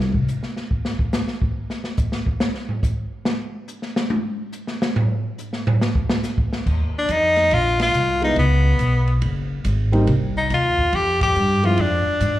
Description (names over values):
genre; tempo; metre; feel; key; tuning
jazz, small-group swing and bop; 141 BPM; 4/4; swing 66% on 8ths; Eb major; A4 = 440 Hz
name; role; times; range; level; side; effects
upright bass; bass; 0.0-0.1, 6.7-12.4 s; Gb1 to Ab2; -20 LUFS; equal; none
open jazz drum kit; drums; 0.0-12.3 s; crash cymbal, hi-hat, kick drum, ride cymbal, snare drum, toms; -23 LUFS; equal; none
edgy tenor saxophone; melody; 7.0-12.4 s; B3 to G4; -19 LUFS; left 1 dB; slapback echo
dark grand piano; accompaniment; 8.2-11.8 s; F3 to Fb4; -25 LUFS; equal; slapback echo
room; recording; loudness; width
light reverb, studio ambience; live gig heard through the venue's PA, club reverb; -18 LUFS; side -14 dB against mid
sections
0.0-6.7 A section; 6.7-12.4 B section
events
drum solo 0.0-6.7; band accent 7.7, 11.1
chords
0.0 N.C.; 6.7 Ebsus2; 8.4 Bsus2; 9.2 Gbadd9; 10.1 Abmaj7 (rootless); 11.8 Ddim